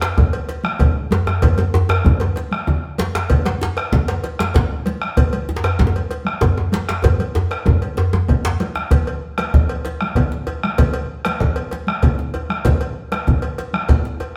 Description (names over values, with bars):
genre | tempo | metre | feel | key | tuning
west african traditional, West African drum ensemble | 128 BPM (dotted quarters) | 12/8 | straight | none | none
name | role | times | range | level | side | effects
bombo | percussion | 0.0-14.3 s | none | -22 LUFS | equal | none
congas | percussion | 0.0-14.0 s | none | -26 LUFS | equal | none
cowbell | percussion | 0.0-14.3 s | none | -30 LUFS | equal | none
djembe | percussion | 0.0-14.3 s | none | -26 LUFS | equal | none
djembe | percussion | 0.0-8.6 s | none | -22 LUFS | equal | none
room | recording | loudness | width
wet stone room reverb, RT60 1.0 s | band playing live in one room | -19 LUFS | mono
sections
0.0-8.9 A section; 8.9-14.4 B section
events
drum fill 7.0-8.9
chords
none